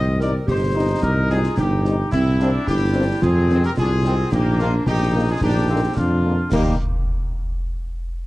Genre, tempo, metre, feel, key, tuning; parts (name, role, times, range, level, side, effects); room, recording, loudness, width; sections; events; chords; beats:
military-style march for wind band; 109 BPM; 2/4; straight; Eb major; A4 = 440 Hz
dark trumpet section; melody; 0.0-6.7 s; E4 to Eb5; -26 LUFS; left 2 dB
warm woodwind section; second line; 0.0-6.7 s; Bb3 to Bb4; -25 LUFS; right 2 dB
warm trombone section; sustained chords; 0.0-6.8 s; Eb3 to E4; -29 LUFS; left 1 dB
dark tuba; bass; 0.0-6.7 s; G1 to F2; -20 LUFS; equal
warm French horn section; accompaniment; 0.2-6.8 s; D3 to Eb4; -26 LUFS; left 2 dB
concert snare drum, concert bass drum and clash cymbals; drums; 0.2-6.8 s; -26 LUFS; equal
small room ambience; dark, warm production; -17 LUFS; side -18 dB against mid
0.0-6.5 A section; 6.5-7.6 B section
0.0 Cm; 2.1 C7; 3.2 Fm7; 4.3 Eb5/Bb; 5.4 Bb7; 6.5 Eb
0.48 | 1.03 1.58 | 2.12 2.67 | 3.22 3.77 | 4.32 4.87 | 5.42 5.97 | 6.52